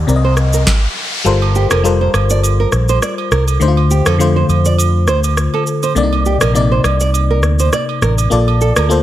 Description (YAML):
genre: afrobeats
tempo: 102 BPM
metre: 4/4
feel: swing 55% on 16ths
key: G minor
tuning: A4 = 440 Hz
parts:
  - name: FM electric piano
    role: accompaniment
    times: 0.0-9.0 s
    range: C3 to Eb5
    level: -17 LUFS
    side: left 4 dB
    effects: chorus
  - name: fingered electric bass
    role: bass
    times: 0.0-9.0 s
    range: F1 to F2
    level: -14 LUFS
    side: equal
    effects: none
  - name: riser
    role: sound effects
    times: 0.0-1.3 s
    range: none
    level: -24 LUFS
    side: left 1 dB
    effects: none
  - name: booming analog drum machine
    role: drums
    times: 0.1-9.0 s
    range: kick drum, rim click, shaker, snare drum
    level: -19 LUFS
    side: equal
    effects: none
  - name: nylon-string guitar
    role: riff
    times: 0.2-8.9 s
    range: G4 to D5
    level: -20 LUFS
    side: right 6 dB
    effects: none
  - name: agogo bells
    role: percussion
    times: 1.4-8.9 s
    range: none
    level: -24 LUFS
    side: right 13 dB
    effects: none
room: digital ambience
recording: none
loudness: -11 LUFS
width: side -13 dB against mid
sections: 0.0-1.3 A section; 1.3-9.0 B section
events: riser 0.0-1.3; stop 0.7-1.3; kick muted 1.3-9.0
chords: 0.1 Cm7; 1.3 Gm11; 3.6 Dm7; 6.0 Cm9; 8.3 Bbmaj7